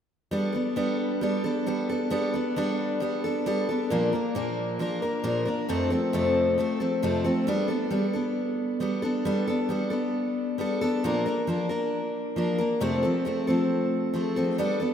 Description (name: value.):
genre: rock.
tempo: 135 BPM.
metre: 4/4.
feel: straight.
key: unclear.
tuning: A4 = 442 Hz.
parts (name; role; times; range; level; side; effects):
picked steel-string acoustic guitar; solo; 0.3-14.9 s; F2 to Bb4; -24 LUFS; equal; analog delay.
room: wet lush hall reverb, RT60 2.6 s.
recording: rough home demo mix.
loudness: -24 LUFS.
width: side -8 dB against mid.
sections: 0.3-7.5 A section; 7.5-14.9 B section.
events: none.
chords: 0.3 Gadd9; 3.9 Bb; 5.7 F; 7.5 Gadd9; 11.0 Bb; 12.8 F.